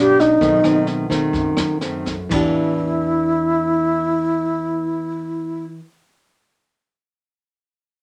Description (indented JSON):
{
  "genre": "bossa nova",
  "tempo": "119-135 BPM",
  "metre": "4/4",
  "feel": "straight",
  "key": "E minor",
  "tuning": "A4 = 436 Hz",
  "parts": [
    { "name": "alto flute", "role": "melody", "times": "0.0-5.7 s", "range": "D#4 to G4", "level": "-20 LUFS", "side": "equal", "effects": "none" },
    { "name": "nylon-string guitar", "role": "accompaniment", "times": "0.0-5.9 s", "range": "F#2 to G4", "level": "-24 LUFS", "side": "equal", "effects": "none" },
    { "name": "upright bass", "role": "bass", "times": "0.0-5.6 s", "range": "B1 to F#2", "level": "-34 LUFS", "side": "equal", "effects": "none" },
    { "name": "jazz brush drum kit", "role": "drums", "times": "0.2-2.4 s", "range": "kick drum, rim click, snare drum, splash cymbal, toms", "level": "-30 LUFS", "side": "equal", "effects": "none" }
  ],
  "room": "moderate studio reverb, RT60 0.5 s",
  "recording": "none",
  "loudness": "-19 LUFS",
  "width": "mono",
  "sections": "0.0-2.3 A section; 2.3-6.3 B section",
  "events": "slowing down 0.0-2.3",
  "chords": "0.4 B7b9; 2.3 Em7"
}